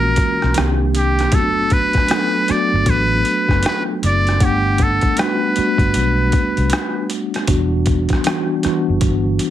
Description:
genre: R&B, neo-soul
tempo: 78 BPM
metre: 4/4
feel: swing 62% on 16ths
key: E minor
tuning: A4 = 442 Hz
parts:
  - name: trumpet with metal mute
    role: melody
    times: 0.0-7.1 s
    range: G4 to D5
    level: -19 LUFS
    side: equal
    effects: none
  - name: mellow tine electric piano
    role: accompaniment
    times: 0.0-9.5 s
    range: Eb3 to F#5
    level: -20 LUFS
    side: left 1 dB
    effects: medium stereo tremolo
  - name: vintage muted fingered electric bass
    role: bass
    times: 0.0-9.4 s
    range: E1 to C2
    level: -19 LUFS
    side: equal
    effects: none
  - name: boom bap sampler-style drum kit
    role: drums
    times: 0.2-9.5 s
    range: hi-hat, kick drum, rim click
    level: -20 LUFS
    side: equal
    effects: none
room: light reverb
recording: heavily compressed radio sound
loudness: -14 LUFS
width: side -12 dB against mid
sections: 0.0-9.5 A section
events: none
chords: 0.0 F#7; 0.6 Cm7; 1.3 Bm7/F#; 4.4 Gmaj9; 7.5 Em9

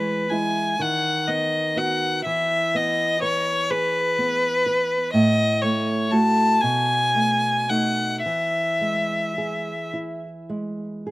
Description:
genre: romantic duo for violin and classical guitar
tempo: 35-42 BPM (dotted quarters)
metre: 6/8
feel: rubato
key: E major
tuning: A4 = 443 Hz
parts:
  - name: clear violin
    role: melody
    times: 0.0-9.9 s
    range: B4 to A5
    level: -21 LUFS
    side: left 1 dB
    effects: none
  - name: nylon-string guitar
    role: accompaniment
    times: 0.0-11.1 s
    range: A2 to B4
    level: -25 LUFS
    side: right 2 dB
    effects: none
room: little or no reverb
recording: recorded outdoors, with no room sound, faint mains hum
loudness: -20 LUFS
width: side -19 dB against mid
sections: 0.0-11.1 A section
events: none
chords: 0.0 E; 0.8 B/D#; 2.3 E; 5.2 F#m/A; 6.7 B7; 8.3 E

